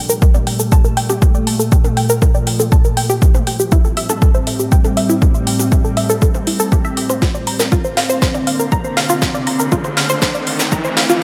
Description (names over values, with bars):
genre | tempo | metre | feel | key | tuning
melodic techno | 120 BPM | 4/4 | straight | unclear | A4 = 440 Hz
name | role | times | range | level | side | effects
evolving wavetable pad | sustained chords | 0.0-11.2 s | A2 to C4 | -22 LUFS | equal | chorus, built-in reverb, sidechain pumping
unison pluck | arpeggios | 0.1-11.2 s | E4 to Bb5 | -22 LUFS | equal | sidechain pumping, tape echo
techno drum kit | drums | 0.1-11.2 s | hi-hat, shaker, snare drum, toms | -23 LUFS | equal | high-pass filter on perc, high-pass filter on hats, high-pass filter on toms, high-pass filter on snare
electronic kick drum | drums | 0.2-10.8 s | none | -15 LUFS | equal | none
riser | sound effects | 8.0-11.2 s | none | -27 LUFS | equal | none
room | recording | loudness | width
light reverb | high-pass filter | -15 LUFS | mono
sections
0.0-11.2 A section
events
build-up 0.0-11.2; filter sweep on synth arpeggio sound 0.0-11.2; filter sweep 0.0-11.2; drum fill 7.2-11.2; riser 8.4-11.2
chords
0.0 Gmadd9; 3.2 Am7; 7.2 Bbadd9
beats
0.22 0.72 | 1.22 1.72 2.22 2.72 | 3.22 3.72 4.22 4.72 | 5.22 5.72 6.22 6.72 | 7.22 7.72 8.22 8.72 | 9.22 9.72 10.22 10.72 | 11.22